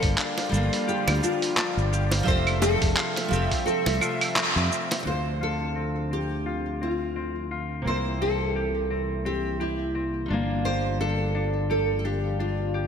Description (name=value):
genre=sunset chillout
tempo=86 BPM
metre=4/4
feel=swing 57% on 16ths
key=D minor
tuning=A4 = 443 Hz
part: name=nylon-string guitar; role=melody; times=0.0-12.9 s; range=E4 to C5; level=-29 LUFS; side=equal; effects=wide subtle chorus
part: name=nylon-string guitar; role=accompaniment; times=0.0-12.9 s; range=C3 to E5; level=-32 LUFS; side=right 1 dB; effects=auto-pan, low-pass filter, ping-pong delay
part: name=lush unison pad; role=sustained chords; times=0.0-12.9 s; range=C3 to E5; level=-34 LUFS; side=equal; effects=chorus
part: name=concert harp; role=arpeggios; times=0.0-12.9 s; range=C4 to G4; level=-33 LUFS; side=left 5 dB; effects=low-pass filter, ping-pong delay
part: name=fingered electric bass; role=bass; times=0.0-12.9 s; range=F1 to F2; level=-28 LUFS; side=equal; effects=none
part: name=dusty soul sampler-style drum kit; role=drums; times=0.0-5.0 s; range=cabasa, claves, handclaps, hi-hat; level=-27 LUFS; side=right 1 dB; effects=low-pass filter on perc, low-pass filter on hats, low-pass filter on snare
part: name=electronic kick drum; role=drums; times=0.0-3.6 s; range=none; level=-27 LUFS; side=equal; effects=none
part: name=bongos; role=percussion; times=0.4-5.0 s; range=none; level=-34 LUFS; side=right 1 dB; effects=none
room=wet lush hall reverb, RT60 1.9 s, small room ambience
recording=bright 1980s-style digital production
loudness=-23 LUFS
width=side -7 dB against mid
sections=0.0-5.1 A section; 5.1-12.9 B section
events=band accent 4.4-4.7; filter sweep on analog synth pad 5.1-12.9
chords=0.0 Gm7; 2.3 Fmaj9; 5.1 Dm7; 7.9 C7; 10.3 Gm7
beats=0.18 0.88 1.58 | 2.28 2.97 3.67 4.37 | 5.07 5.76 6.46 7.16 | 7.86 8.55 9.25 9.95 | 10.65 11.35 12.04 12.74